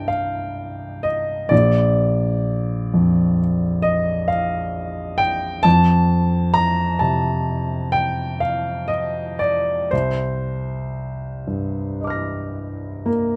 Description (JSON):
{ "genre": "classical, impressionist solo piano", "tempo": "37-45 BPM (dotted quarters)", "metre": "9/8", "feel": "rubato", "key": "C dorian", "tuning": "A4 = 438 Hz", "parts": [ { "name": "warm grand piano", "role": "solo", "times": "0.0-13.4 s", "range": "Bb1 to Bb6", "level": "-21 LUFS", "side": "equal", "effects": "none" } ], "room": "little or no reverb", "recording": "close, detailed microphones", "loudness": "-21 LUFS", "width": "mono", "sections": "0.0-13.4 A section", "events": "none", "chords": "0.0 C5; 1.5 Bb; 5.7 F; 9.9 Cm11" }